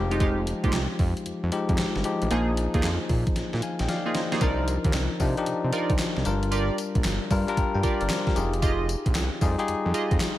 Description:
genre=R&B, new jack swing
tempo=114 BPM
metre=4/4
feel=swing 66% on 16ths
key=C minor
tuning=A4 = 438 Hz
part: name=barky tine electric piano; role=accompaniment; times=0.0-10.4 s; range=F3 to Bb5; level=-28 LUFS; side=left 3 dB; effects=none
part: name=fat analog bass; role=bass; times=0.0-10.3 s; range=F1 to C3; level=-27 LUFS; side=equal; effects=none
part: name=funky polysynth comp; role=stabs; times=0.1-10.1 s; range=Ab3 to Eb5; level=-31 LUFS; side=right 4 dB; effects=chorus
part: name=gated 80s digital drum machine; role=drums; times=0.1-10.4 s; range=handclaps, hi-hat, kick drum, snare drum, tambourine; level=-27 LUFS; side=equal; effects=gated reverb, gated reverb snare, overdrive
room=little or no reverb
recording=none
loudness=-23 LUFS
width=side -14 dB against mid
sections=0.0-4.4 A section; 4.4-10.4 B section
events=tine electric piano fill 0.0; drum fill 3.4-4.4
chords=0.0 Fm9; 2.3 Bb7sus4; 4.4 Cm11; 6.3 Gm7; 8.4 Fm9

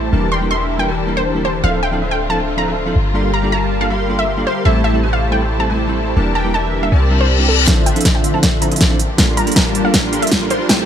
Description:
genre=future bass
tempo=159 BPM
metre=4/4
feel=half-time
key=D minor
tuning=A4 = 439 Hz
part: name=rich studio string section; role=sustained chords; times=0.0-10.9 s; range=C3 to G4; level=-29 LUFS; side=left 2 dB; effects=sidechain pumping, low-pass filter
part: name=big bright polysynth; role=riff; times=0.0-10.9 s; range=D3 to C6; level=-20 LUFS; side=left 1 dB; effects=analog chorus, sidechain pumping
part: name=warm 808-style bass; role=bass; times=0.0-7.7 s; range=D1 to C2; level=-18 LUFS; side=equal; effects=sidechain pumping
part: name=bell-like tine electric piano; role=accompaniment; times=0.1-10.9 s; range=F3 to Bb4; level=-23 LUFS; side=right 2 dB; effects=sidechain pumping, ping-pong delay
part: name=wide unison pluck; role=melody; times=0.3-10.8 s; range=A4 to C6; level=-22 LUFS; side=equal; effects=sidechain pumping, ping-pong delay
part: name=reverse cymbal and riser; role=sound effects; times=7.1-10.9 s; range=none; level=-23 LUFS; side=left 6 dB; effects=none
part: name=big-room dance drum kit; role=drums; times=7.7-10.8 s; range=hi-hat, snare drum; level=-16 LUFS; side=equal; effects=none
part: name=electronic kick drum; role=drums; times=7.7-10.8 s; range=none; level=-17 LUFS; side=equal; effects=none
room=light reverb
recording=high-pass filter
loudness=-13 LUFS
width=side -9 dB against mid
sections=0.0-7.7 A section; 7.7-10.9 B section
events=reverse cymbal 7.1-7.7; build-up 7.7-10.9; drum fill 7.7-10.9; filter sweep on analog polysynth 7.7-10.9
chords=0.1 Em7b5; 1.6 Dm7; 3.0 Gm7; 4.7 Am7; 6.2 Em7b5; 6.9 C7; 7.7 Dm7; 9.0 Gm7

